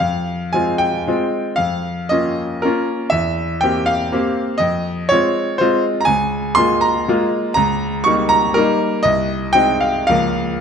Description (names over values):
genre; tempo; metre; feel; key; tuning
classical, romantic triple-time dance for piano with dotted rhythms; 106-132 BPM; 3/4; rubato; F minor; A4 = 441 Hz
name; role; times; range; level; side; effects
clear grand piano; solo; 0.0-10.6 s; C2 to Db6; -15 LUFS; equal; none
room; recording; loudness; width
moderate recital hall reverb, RT60 1.6 s; close, detailed microphones; -15 LUFS; side -7 dB against mid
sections
0.0-10.6 A section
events
none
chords
0.0 Fm; 1.6 Bbm/F; 3.1 C7/E; 4.6 Fm; 6.1 Bbm7/Db; 7.6 Eb7/Db; 9.0 Ab/C; 10.1 Bbm/Db